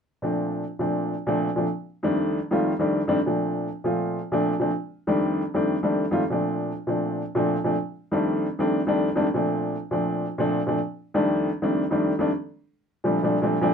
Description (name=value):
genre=jazz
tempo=158 BPM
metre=4/4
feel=straight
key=Bb major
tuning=A4 = 441 Hz
part: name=warm upright piano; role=solo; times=0.2-13.7 s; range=F2 to F4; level=-22 LUFS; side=equal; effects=none
room=light reverb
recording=minimal, uncompressed stereo recording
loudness=-22 LUFS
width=side -6 dB against mid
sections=0.1-12.3 A section; 12.3-13.7 B section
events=none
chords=0.1 Bbmaj7; 1.7 F13; 3.2 Bbmaj7; 4.7 F13; 6.2 Bbmaj7; 7.7 F13; 9.3 Bbmaj7; 10.8 F13; 12.3 Bbmaj13